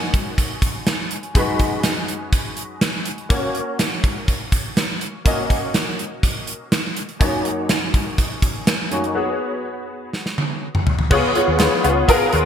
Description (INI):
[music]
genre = 1980s-style pop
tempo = 123 BPM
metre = 4/4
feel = straight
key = F# major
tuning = A4 = 441 Hz
[part]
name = clear concert grand piano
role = accompaniment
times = 0.0-12.5 s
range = F#2 to D#5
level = -21 LUFS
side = left 1 dB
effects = ensemble chorus
[part]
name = gated 80s drum kit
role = drums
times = 0.1-12.4 s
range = crash cymbal, hi-hat, kick drum, snare drum, toms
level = -19 LUFS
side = equal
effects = gated reverb
[part]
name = woody fretless electric bass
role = bass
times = 11.1-12.5 s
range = C#2 to D#2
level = -21 LUFS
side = equal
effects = analog chorus
[part]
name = group handclap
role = percussion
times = 11.6-11.7 s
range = none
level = -34 LUFS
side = right 3 dB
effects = none
[sound]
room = moderate lush hall reverb, RT60 1.7 s, small room ambience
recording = bright 1980s-style digital production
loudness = -18 LUFS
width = side -8 dB against mid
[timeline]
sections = 0.0-11.1 A section; 11.1-12.5 B section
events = break 9.2-11.1; drum fill 10.1-11.1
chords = 0.0 D#m7/F#; 1.4 G#m7/F#; 3.3 F#; 7.2 D#m7/F#; 9.2 C#7sus4; 11.1 C#7